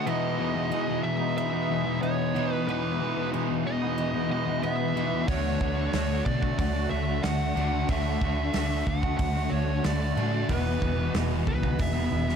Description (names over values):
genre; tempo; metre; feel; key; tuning
rock, shoegaze and dream pop; 92 BPM; 4/4; straight; unclear; A4 = 440 Hz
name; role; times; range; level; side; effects
fuzz lead guitar; melody; 0.0-12.4 s; B4 to F#5; -32 LUFS; equal; distortion, analog delay
picked twelve-string acoustic guitar; arpeggios; 0.0-12.4 s; E3 to A4; -37 LUFS; right 2 dB; analog chorus, analog delay
distorted electric guitar; riff; 0.0-12.4 s; E2 to D4; -32 LUFS; right 1 dB; distortion
thick fuzz guitar; riff; 0.0-12.4 s; E2 to D4; -31 LUFS; left 10 dB; distortion, analog chorus
twangy electric guitar; riff; 0.0-12.4 s; D3 to F#4; -34 LUFS; right 12 dB; reverse reverb
vintage muted picked electric bass; bass; 5.3-12.4 s; E1 to B2; -29 LUFS; right 1 dB; none
loose indie drum kit; drums; 5.3-12.4 s; hi-hat, kick drum, snare drum; -32 LUFS; right 1 dB; none
room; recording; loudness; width
light reverb, studio reverb; none; -24 LUFS; side -7 dB against mid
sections
0.0-12.4 A section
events
none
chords
0.1 Emaj7; 5.3 Dmaj7; 10.5 Emaj7